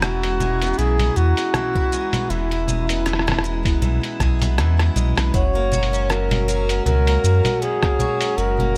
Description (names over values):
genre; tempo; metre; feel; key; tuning
folktronica; 79 BPM; 4/4; swing 56% on 16ths; F# mixolydian; A4 = 440 Hz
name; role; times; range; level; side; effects
breathy flugelhorn; melody; 0.0-8.8 s; E4 to C#5; -26 LUFS; equal; digital delay
warbly tape-like pad; sustained chords; 0.0-8.8 s; G#3 to A#5; -35 LUFS; equal; chorus, built-in reverb
picked twelve-string acoustic guitar; arpeggios; 0.0-8.8 s; F#2 to E4; -30 LUFS; equal; digital delay
warm sub bass; bass; 0.0-8.8 s; E1 to F#2; -22 LUFS; equal; tube saturation
lo-fi sampler-style drum kit; drums; 0.0-8.7 s; congas, hi-hat, rim click, shaker; -27 LUFS; equal; none
electronic kick drum; drums; 1.8-8.0 s; none; -24 LUFS; equal; none
vibraphone with hard mallets; second line; 5.3-8.8 s; C#5 to C#6; -32 LUFS; equal; digital delay
room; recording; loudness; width
little or no reverb; none; -20 LUFS; mono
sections
0.0-5.3 A section; 5.3-8.8 B section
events
drum fill 4.2-5.3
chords
0.0 Eadd9; 5.3 F#